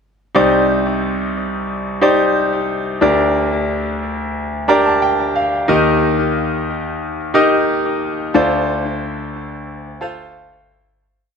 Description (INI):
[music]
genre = pop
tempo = 90 BPM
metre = 4/4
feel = straight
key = C dorian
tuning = A4 = 440 Hz
[part]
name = bright concert grand piano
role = solo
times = 0.3-11.0 s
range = C2 to Bb5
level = -15 LUFS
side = equal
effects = ping-pong delay
[sound]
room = moderate lush hall reverb, RT60 2.3 s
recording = faint mains hum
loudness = -14 LUFS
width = side -6 dB against mid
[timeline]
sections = 0.4-11.0 verse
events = grand piano fill 4.4-5.7; fade-out 8.4-11.0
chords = 0.4 Cmadd9; 3.0 Gm/D; 5.7 Eb; 8.4 Dm7